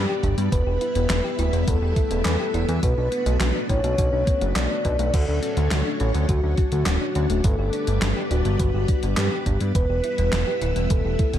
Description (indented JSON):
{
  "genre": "synthwave",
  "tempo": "104 BPM",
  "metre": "4/4",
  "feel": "straight",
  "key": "unclear",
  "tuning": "A4 = 440 Hz",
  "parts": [
    { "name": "soft octave-layered synth lead", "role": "melody", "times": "0.0-11.4 s", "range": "F#4 to D5", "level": "-27 LUFS", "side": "left 1 dB", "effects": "chorus, tremolo, digital delay" },
    { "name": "string machine, full ensemble", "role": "sustained chords", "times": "0.0-11.4 s", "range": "G3 to E5", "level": "-30 LUFS", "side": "equal", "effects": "ensemble chorus, sidechain pumping" },
    { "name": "thumb-piano-like synth pluck", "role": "arpeggios", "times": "0.0-11.4 s", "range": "A3 to B4", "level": "-32 LUFS", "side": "left 2 dB", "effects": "chorus, digital delay" },
    { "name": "fat analog bass", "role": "bass", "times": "0.0-11.4 s", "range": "D1 to G2", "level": "-23 LUFS", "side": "equal", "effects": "none" },
    { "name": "electronic kick drum", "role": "drums", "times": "0.2-11.3 s", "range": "none", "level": "-22 LUFS", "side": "equal", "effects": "overdrive" },
    { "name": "gated 80s digital drum machine", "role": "drums", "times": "0.2-11.4 s", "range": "crash cymbal, handclaps, hi-hat, snare drum", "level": "-29 LUFS", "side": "equal", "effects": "gated reverb, gated reverb snare, overdrive" }
  ],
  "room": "light reverb",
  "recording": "dark, warm production",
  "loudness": "-20 LUFS",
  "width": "side -11 dB against mid",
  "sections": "0.0-11.4 A section",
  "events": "none",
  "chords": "0.0 G; 0.5 Em; 2.8 Bm7; 5.1 Dmaj7; 7.4 G; 9.8 Em",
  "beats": "| 0.52 1.10 1.68 2.25 | 2.83 3.41 3.98 4.56 | 5.14 5.71 6.29 6.87 | 7.45 8.02 8.60 9.18 | 9.75 10.33 10.91"
}